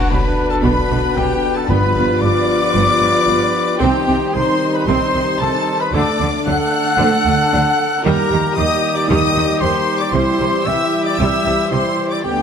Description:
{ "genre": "cinematic", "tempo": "114 BPM", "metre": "4/4", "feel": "straight", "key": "unclear", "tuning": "A4 = 442 Hz", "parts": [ { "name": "warm symphonic violin section", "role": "melody", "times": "0.0-12.4 s", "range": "G5 to F#6", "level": "-22 LUFS", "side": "left 5 dB", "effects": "none" }, { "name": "dark clarinet", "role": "second line", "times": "0.0-12.4 s", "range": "B3 to F4", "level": "-26 LUFS", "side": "left 2 dB", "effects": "none" }, { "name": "silver concert flute", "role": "second line", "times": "0.0-12.4 s", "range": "G5 to F#6", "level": "-25 LUFS", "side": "left 4 dB", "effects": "none" }, { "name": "warm cor anglais", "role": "second line", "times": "0.0-12.4 s", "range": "G4 to C5", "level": "-26 LUFS", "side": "right 3 dB", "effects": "none" }, { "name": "warm symphonic violin section", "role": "second line", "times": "0.0-12.4 s", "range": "G4 to F#5", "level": "-26 LUFS", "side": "left 3 dB", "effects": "none" }, { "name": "rich symphonic viola section", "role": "accompaniment", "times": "0.0-12.4 s", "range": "Eb3 to G4", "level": "-23 LUFS", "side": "right 1 dB", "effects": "none" }, { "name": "dark trombone section", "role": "sustained chords", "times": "0.0-12.4 s", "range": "D3 to B3", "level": "-25 LUFS", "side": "right 4 dB", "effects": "none" }, { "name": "warm French horn section", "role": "sustained chords", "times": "0.0-12.4 s", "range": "G3 to G4", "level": "-25 LUFS", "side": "left 6 dB", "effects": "none" }, { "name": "clear trumpet", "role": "stabs", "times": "0.0-12.4 s", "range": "G4 to F#5", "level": "-22 LUFS", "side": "equal", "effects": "none" }, { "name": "rich symphonic cello section", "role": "bass", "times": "0.1-12.4 s", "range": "G2 to Eb3", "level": "-23 LUFS", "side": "right 3 dB", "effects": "none" }, { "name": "rich symphonic double bass section", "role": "bass", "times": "0.1-12.4 s", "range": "G1 to Eb2", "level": "-23 LUFS", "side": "right 3 dB", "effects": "none" }, { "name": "timpani", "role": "percussion", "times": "1.7-2.4 s", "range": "G2", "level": "-24 LUFS", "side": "left 2 dB", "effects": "none" } ], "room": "moderate concert hall reverb, RT60 1.9 s", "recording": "close, detailed microphones", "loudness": "-14 LUFS", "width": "side -7 dB against mid", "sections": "0.0-12.4 A section", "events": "none", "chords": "0.0 Bm; 1.7 G7; 3.8 Cm; 5.9 D; 8.0 Eb; 10.1 C", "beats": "0.10 0.64 1.17 | 1.69 2.22 2.75 3.28 | 3.81 4.34 4.87 5.40 | 5.93 6.46 6.98 7.51 | 8.04 8.56 9.08 9.61 | 10.13 10.66 11.19 11.71 | 12.24" }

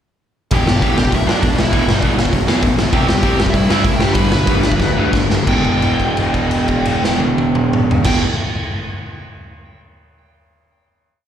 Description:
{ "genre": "punk rock", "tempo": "171-200 BPM", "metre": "4/4", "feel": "straight", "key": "E minor", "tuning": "A4 = 440 Hz", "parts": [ { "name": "dark smooth lead guitar", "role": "melody", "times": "0.5-8.2 s", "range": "D4 to B5", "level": "-23 LUFS", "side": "left 1 dB", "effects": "overdrive, slapback echo, ping-pong delay" }, { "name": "raw garage guitar", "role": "riff", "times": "0.5-8.2 s", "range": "E2 to C4", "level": "-20 LUFS", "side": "right 10 dB", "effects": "overdrive, slapback echo" }, { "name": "sludgy distorted guitar", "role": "riff", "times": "0.5-8.2 s", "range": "E2 to C4", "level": "-21 LUFS", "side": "left 8 dB", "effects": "overdrive, slapback echo" }, { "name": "fuzz picked electric bass", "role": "bass", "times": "0.5-8.2 s", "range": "E1 to G2", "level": "-20 LUFS", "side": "equal", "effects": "overdrive" }, { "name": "raw garage drum kit", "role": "drums", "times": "0.5-8.1 s", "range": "crash cymbal, hi-hat, kick drum, snare drum, toms", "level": "-17 LUFS", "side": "equal", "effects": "none" } ], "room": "small room reverb", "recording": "live gig heard through the venue's PA, recital hall reverb", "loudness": "-13 LUFS", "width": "side -9 dB against mid", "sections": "0.5-5.5 verse; 5.5-8.3 final chord", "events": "slowing down 2.9-5.5; drum fill 4.8-5.5; held note 5.5-8.1", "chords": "0.5 Em; 2.9 C; 4.0 G; 5.5 Em", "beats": "| 0.52 0.82 1.12 1.42 | 1.73 2.03 2.33 2.63 | 2.93 3.23 3.54 3.84 | 4.16 4.47 4.80 5.13 | 5.47 5.82 6.17 6.52 | 6.87 7.22 7.57 7.92" }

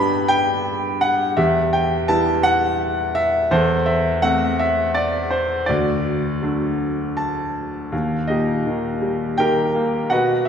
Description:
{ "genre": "classical, lyrical solo piano", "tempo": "83 BPM", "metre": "3/4", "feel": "rubato", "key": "unclear", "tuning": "A4 = 440 Hz", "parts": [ { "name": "bright grand piano", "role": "solo", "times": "0.0-10.5 s", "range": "D2 to B5", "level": "-17 LUFS", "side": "equal", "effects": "none" } ], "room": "wet church reverb, RT60 2.6 s", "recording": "recorded in a church or concert hall", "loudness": "-17 LUFS", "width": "side -7 dB against mid", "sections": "0.0-7.9 A section; 7.9-10.5 B section", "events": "grand piano fill 6.8-7.9", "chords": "0.0 G; 1.4 Em; 3.5 Am/E; 5.7 D; 7.9 Eb", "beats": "0.65 | 1.37 2.09 2.81 | 3.52 4.24 4.96 | 5.69 6.42 7.18 | 7.93 8.66 9.39 | 10.12" }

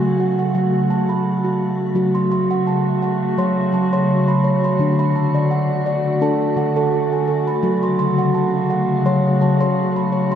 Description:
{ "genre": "world meditative, meditative tuned percussion", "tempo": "84 BPM", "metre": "4/4", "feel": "swing 54% on 16ths", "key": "F# minor", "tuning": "A4 = 440 Hz", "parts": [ { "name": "glassy FM pad", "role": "sustained chords", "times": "0.0-10.4 s", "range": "C#3 to F#4", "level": "-20 LUFS", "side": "left 1 dB", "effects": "ensemble chorus, built-in reverb, shimmer reverb" }, { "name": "steel tongue drum", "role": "arpeggios", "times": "0.0-10.4 s", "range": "D3 to B#5", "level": "-18 LUFS", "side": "right 1 dB", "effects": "tape echo, shimmer reverb" } ], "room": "wet cathedral reverb, RT60 4.9 s", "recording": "dark, warm production", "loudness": "-16 LUFS", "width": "side -9 dB against mid", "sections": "0.0-2.0 A section; 2.0-10.4 B section", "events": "none", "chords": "0.0 F#m; 4.8 D; 7.6 F#m", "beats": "0.54 1.25 | 1.96 2.67 3.38 4.09 | 4.80 5.51 6.22 6.93 | 7.64 8.35 9.06 9.77" }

